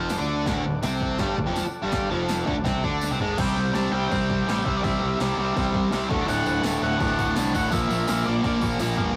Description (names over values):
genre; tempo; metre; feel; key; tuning
garage rock duo or trio; 166 BPM; 4/4; straight; D mixolydian; A4 = 439 Hz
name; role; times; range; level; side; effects
overdriven combo organ; sustained chords; 0.0-9.2 s; F4 to A5; -40 LUFS; equal; none
biting overdriven guitar; riff; 0.0-9.2 s; D2 to D4; -27 LUFS; equal; none
fuzz fingered electric bass; bass; 0.0-9.1 s; D1 to D2; -31 LUFS; equal; overdrive
punchy analog drum machine; drums; 0.1-9.1 s; crash cymbal, hi-hat, kick drum, snare drum, toms; -33 LUFS; equal; overdrive
tambourine; percussion; 0.1-3.1, 6.3-8.9 s; none; -42 LUFS; equal; none
octave-fuzz lead guitar; melody; 3.4-8.6 s; D5 to A5; -32 LUFS; equal; distortion
room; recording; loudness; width
moderate stone room reverb, RT60 1.1 s; rough rehearsal-room recording, warm saturation; -24 LUFS; mono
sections
0.0-3.4 A section; 3.4-9.2 B section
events
transistor combo organ fill 2.7-3.4; drum fill 3.0-3.4, 8.8-9.2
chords
0.0 D; 3.4 C; 6.1 D; 7.7 Bb